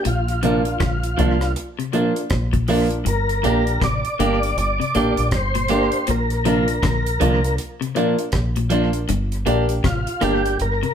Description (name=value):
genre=roots reggae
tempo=80 BPM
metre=4/4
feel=swing 61% on 16ths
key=unclear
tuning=A4 = 440 Hz
part: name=tonewheel organ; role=melody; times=0.0-10.9 s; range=F4 to D5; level=-23 LUFS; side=equal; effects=chorus vibrato, slow rotary speaker
part: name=clean electric guitar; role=arpeggios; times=0.1-10.9 s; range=G2 to D3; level=-28 LUFS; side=left 7 dB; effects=none
part: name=deep dub fingered electric bass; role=bass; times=0.1-10.8 s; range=G1 to C2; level=-22 LUFS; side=equal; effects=none
part: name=deep reggae drum kit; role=drums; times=0.1-10.9 s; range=hi-hat, kick drum, rim click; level=-27 LUFS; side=equal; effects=dub echo
part: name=clean electric guitar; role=accompaniment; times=0.4-10.4 s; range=F3 to G4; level=-22 LUFS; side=right 4 dB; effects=spring reverb
part: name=dark upright piano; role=stabs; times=0.4-10.5 s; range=D4 to D5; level=-25 LUFS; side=left 3 dB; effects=none
room=moderate large studio reverb, RT60 0.9 s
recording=band playing live in one room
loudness=-18 LUFS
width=side -8 dB against mid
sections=0.0-10.9 A section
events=none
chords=0.0 Bb; 3.1 Gm; 6.1 Bb; 9.1 Gm